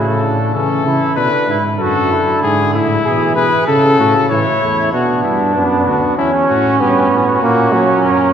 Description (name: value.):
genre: classical, imitative canzona for brass ensemble.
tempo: 96 BPM.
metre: 4/4.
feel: straight.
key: B minor from 4.9 s.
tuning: A4 = 439 Hz.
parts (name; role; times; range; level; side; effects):
clear trumpet; melody; 0.0-8.3 s; D4 to C#5; -17 LUFS; left 5 dB; none.
warm flugelhorn; second line; 0.0-8.3 s; C#4 to A4; -17 LUFS; right 3 dB; none.
warm trombone; accompaniment; 0.0-8.3 s; C#3 to C#4; -17 LUFS; right 2 dB; none.
mellow tuba; bass; 0.0-8.3 s; D2 to C#3; -19 LUFS; equal; none.
room: wet church reverb, RT60 3.5 s.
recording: recorded in a church or concert hall.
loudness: -11 LUFS.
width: side -8 dB against mid.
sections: 0.0-4.9 A section; 4.9-8.3 B section.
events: none.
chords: 0.0 A; 1.2 Bm; 2.4 E/G#; 3.7 A; 4.9 Bm; 6.2 C#dim/E; 7.4 F#/A#.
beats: 0.55 1.17 1.79 | 2.42 3.05 3.68 4.30 | 4.93 5.55 6.18 6.80 | 7.41 8.03.